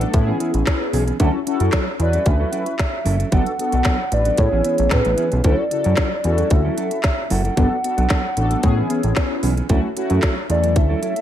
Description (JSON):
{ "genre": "early-eighties boogie funk", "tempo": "113 BPM", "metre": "4/4", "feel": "straight", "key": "D major", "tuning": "A4 = 444 Hz", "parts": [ { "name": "hollow clarinet-like synth lead", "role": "melody", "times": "0.0-11.2 s", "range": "B4 to F#5", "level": "-23 LUFS", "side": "right 1 dB", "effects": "chorus, slapback echo" }, { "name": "mellow synth brass", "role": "accompaniment", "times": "0.0-11.2 s", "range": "C#3 to B4", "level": "-24 LUFS", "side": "left 3 dB", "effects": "chorus, phaser" }, { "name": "mellow electric guitar", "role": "riff", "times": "0.0-11.2 s", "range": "E3 to A4", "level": "-27 LUFS", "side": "right 5 dB", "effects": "analog chorus" }, { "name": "fat analog bass", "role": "bass", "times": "0.0-10.9 s", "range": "F#1 to A2", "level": "-19 LUFS", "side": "equal", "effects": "none" }, { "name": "organic electronic drum kit", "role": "drums", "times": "0.0-11.2 s", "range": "handclaps, hi-hat, kick drum, snare drum", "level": "-21 LUFS", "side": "equal", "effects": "gated reverb" } ], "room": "little or no reverb", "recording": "none", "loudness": "-16 LUFS", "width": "side -11 dB against mid", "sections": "0.0-11.2 A section", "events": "none", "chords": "0.1 Amaj9; 1.2 Dmaj9; 3.3 Gmaj9; 4.4 Amaj9; 5.4 Dmaj9; 7.6 Gmaj9; 8.6 Amaj9; 9.7 Dmaj9", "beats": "0.14 0.67 | 1.20 1.73 2.26 2.79 | 3.32 3.85 4.39 4.92 | 5.45 5.98 6.51 7.04 | 7.57 8.10 8.63 9.16 | 9.70 10.23 10.76" }